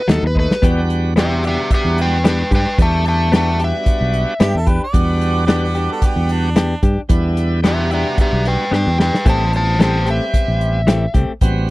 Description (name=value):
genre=straight-eighth soul blues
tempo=111 BPM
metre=4/4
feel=swing 55% on 16ths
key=E minor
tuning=A4 = 444 Hz
part: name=overdriven slide guitar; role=melody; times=0.0-11.1 s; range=G4 to A5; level=-20 LUFS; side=left 1 dB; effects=none
part: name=bright tonewheel organ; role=accompaniment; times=0.0-11.7 s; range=G3 to G4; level=-23 LUFS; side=right 3 dB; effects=overdrive, slow rotary speaker
part: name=direct-recorded clean electric guitar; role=stabs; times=0.1-11.3 s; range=E3 to G4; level=-22 LUFS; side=left 3 dB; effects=none
part: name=fingered electric bass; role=bass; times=0.1-11.7 s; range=A1 to G2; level=-17 LUFS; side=equal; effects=none
part: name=warm soul drum kit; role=drums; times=0.1-11.6 s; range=hi-hat, kick drum, snare drum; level=-16 LUFS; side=equal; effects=none
part: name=clear harmonica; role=second line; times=4.4-6.8 s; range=D4 to D5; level=-24 LUFS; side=right 3 dB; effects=overdrive
room=little or no reverb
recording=dry, close 1970s-style studio recording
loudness=-14 LUFS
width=side -19 dB against mid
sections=0.6-11.7 A section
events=drum fill 0.4, 8.7-9.3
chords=0.0 B7; 0.6 Em7; 9.3 Am7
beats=0.09 | 0.62 1.16 1.70 2.24 | 2.78 3.32 3.86 4.40 | 4.94 5.48 6.02 6.56 | 7.10 7.64 8.18 8.72 | 9.26 9.80 10.34 10.88 | 11.41